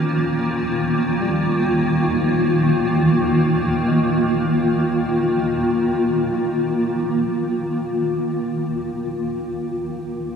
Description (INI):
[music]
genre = ambient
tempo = free time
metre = none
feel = none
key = unclear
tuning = A4 = 444 Hz
[part]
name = granular cloud pad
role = sustained chords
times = 0.0-10.4 s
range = Eb3 to F4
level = -18 LUFS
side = equal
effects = built-in reverb
[part]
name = tine electric piano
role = arpeggios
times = 0.0-10.4 s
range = F3 to Eb5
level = -30 LUFS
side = equal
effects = fast stereo tremolo, ping-pong delay
[sound]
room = wet huge ambient reverb, RT60 8.0 s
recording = in a vast, echoing space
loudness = -18 LUFS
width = side -7 dB against mid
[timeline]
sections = 0.0-10.4 A section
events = fade-out on tine electric piano 0.0-10.4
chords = 0.0 Ebadd9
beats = free time